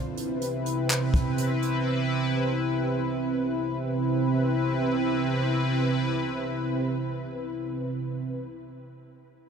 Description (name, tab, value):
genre	hip hop, atmospheric cloud-rap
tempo	free time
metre	none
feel	none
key	C major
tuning	A4 = 440 Hz
part	sweeping resonant pad	sustained chords	0.0-8.4 s	C3 to B4	-25 LUFS	right 1 dB	chorus
part	jazz brush drum kit	drums	0.2-1.7 s	handclaps, hi-hat, kick drum	-27 LUFS	equal	none
room	light reverb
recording	none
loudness	-25 LUFS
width	side -7 dB against mid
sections	0.0-3.8 A section; 3.8-7.7 B section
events	none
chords	0.0 Cmaj7